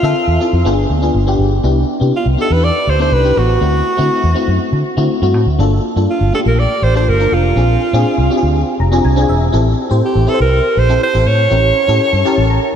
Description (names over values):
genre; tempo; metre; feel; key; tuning
polished 1980s jazz-funk pop; 122 BPM; 4/4; straight; D minor; A4 = 437 Hz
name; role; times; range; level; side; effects
breathy alto saxophone; melody; 0.0-12.8 s; F4 to D5; -16 LUFS; right 2 dB; analog delay
FM electric piano; accompaniment; 0.0-12.8 s; A3 to Bb5; -16 LUFS; left 2 dB; ensemble chorus
vintage muted fingered electric bass; bass; 0.0-12.6 s; E1 to D3; -14 LUFS; equal; none
room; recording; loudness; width
moderate lush hall reverb, RT60 2.6 s; dreamy mix soaked in reverb; -11 LUFS; side -8 dB against mid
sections
0.0-12.8 A section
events
FM electric piano fill 8.6-9.5, 12.0-12.8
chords
0.0 Dm9; 0.6 G7b9; 1.6 Cmaj7; 3.6 D7; 5.6 Gm9; 7.6 Bb9; 9.5 Am7; 11.5 A7b9